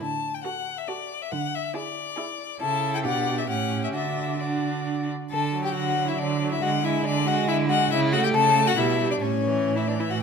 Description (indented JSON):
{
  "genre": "quick classical-period movement for string quartet",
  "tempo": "138 BPM",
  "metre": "3/4",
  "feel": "rubato",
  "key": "D major",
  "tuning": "A4 = 440 Hz",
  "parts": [
    { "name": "clear violin", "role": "melody", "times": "0.0-10.2 s", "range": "C#5 to A5", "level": "-27 LUFS", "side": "left 8 dB", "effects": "none" },
    { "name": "clear cello", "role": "bass", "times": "0.0-10.2 s", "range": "A2 to D3", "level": "-27 LUFS", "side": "right 6 dB", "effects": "none" },
    { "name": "clear viola", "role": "accompaniment", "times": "0.4-10.2 s", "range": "E3 to F#4", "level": "-30 LUFS", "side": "right 4 dB", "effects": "none" },
    { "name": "rich violin", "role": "second line", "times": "0.5-10.2 s", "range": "C#4 to A4", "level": "-28 LUFS", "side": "left 3 dB", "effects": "none" }
  ],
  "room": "moderate recital hall reverb, RT60 1.8 s",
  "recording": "none",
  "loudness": "-22 LUFS",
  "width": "side -6 dB against mid",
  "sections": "0.0-5.3 A section; 5.3-10.2 B section",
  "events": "none",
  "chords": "0.0 D; 1.3 E7/D; 2.6 A/C#; 3.0 G/B; 3.5 A7; 3.9 D; 6.6 E9/D; 7.9 A/C#; 8.8 G/B; 9.2 A"
}